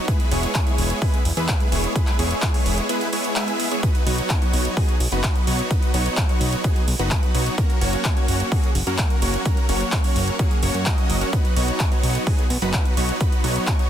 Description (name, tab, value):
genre	EDM, festival progressive house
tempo	128 BPM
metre	4/4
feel	straight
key	B major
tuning	A4 = 441 Hz
part	big supersaw lead	riff	0.0-13.9 s	F#3 to E5	-24 LUFS	equal	sidechain pumping, digital delay
part	big-room dance drum kit	drums	0.1-13.9 s	handclaps, hi-hat	-28 LUFS	equal	none
part	electronic kick drum	drums	0.1-13.8 s	none	-20 LUFS	equal	overdrive
part	fat analog bass	bass	0.3-13.6 s	E1 to F#2	-23 LUFS	equal	sidechain pumping
room	little or no reverb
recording	dense, heavily limited modern master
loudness	-18 LUFS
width	side -10 dB against mid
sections	0.0-13.9 A section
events	kick drops out 2.9-3.8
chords	0.1 E; 3.8 B; 7.6 F#; 11.3 B